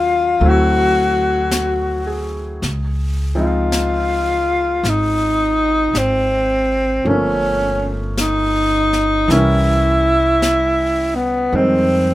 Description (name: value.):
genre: jazz ballad.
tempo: 54 BPM.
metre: 4/4.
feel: swing 66% on 8ths.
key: unclear.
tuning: A4 = 442 Hz.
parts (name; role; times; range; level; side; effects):
breathy tenor saxophone; melody; 0.0-12.1 s; B3 to F#4; -16 LUFS; left 1 dB; none.
bright grand piano; accompaniment; 0.0-12.1 s; Eb3 to Bb4; -22 LUFS; equal; none.
upright bass; bass; 0.0-12.1 s; G1 to F2; -21 LUFS; equal; none.
jazz brush drum kit; drums; 0.4-12.1 s; brushed snare drum, hi-hat, snare drum; -27 LUFS; left 1 dB; none.
room: light reverb.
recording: rough home demo mix.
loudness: -14 LUFS.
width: side -15 dB against mid.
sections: 0.0-12.1 A section.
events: none.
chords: 0.4 D9; 2.6 Dbmaj9; 7.1 Gm7b5; 9.3 C7b9; 11.5 Fm9.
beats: 0.41 1.52 | 2.63 3.73 4.84 5.95 | 7.06 8.17 9.29 10.41 | 11.53.